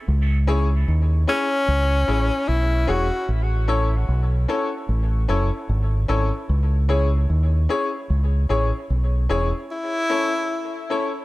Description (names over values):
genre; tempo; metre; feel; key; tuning
reggae; 75 BPM; 4/4; swing 57% on 16ths; C# minor; A4 = 440 Hz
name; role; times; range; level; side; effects
deep dub fingered electric bass; bass; 0.1-9.5 s; E1 to D#2; -19 LUFS; equal; none
bright grand piano; stabs; 0.5-11.1 s; C#4 to C#5; -26 LUFS; left 3 dB; dub echo
clear tenor saxophone; melody; 1.3-3.3, 9.7-10.9 s; C#4 to F#4; -24 LUFS; left 2 dB; dub echo
room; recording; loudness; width
light reverb, small room ambience; none; -19 LUFS; side -18 dB against mid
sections
0.0-11.2 A section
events
break 9.7-11.2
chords
0.1 C#m; 3.3 A; 6.5 C#m; 9.7 A